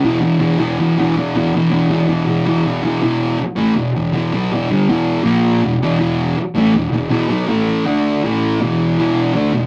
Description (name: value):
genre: rock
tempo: 161 BPM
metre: 4/4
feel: straight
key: unclear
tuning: A4 = 440 Hz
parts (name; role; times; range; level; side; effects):
- thick fuzz guitar; solo; 0.0-9.7 s; E2 to D4; -16 LUFS; equal; distortion
room: wet booth ambience, RT60 0.3 s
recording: rough rehearsal-room recording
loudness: -16 LUFS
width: mono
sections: 0.0-3.0 A section; 3.0-9.0 B section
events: none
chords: 0.0 E5; 5.2 A#5; 5.6 E5; 7.5 A5; 7.8 D5; 8.2 A5; 8.6 E5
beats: | 0.03 0.40 0.78 1.15 | 1.52 1.89 2.27 2.64 | 3.01 3.38 3.76 4.13 | 4.50 4.87 5.25 5.62 | 5.99 6.36 6.73 7.10 | 7.47 7.85 8.22 8.59 | 8.96 9.33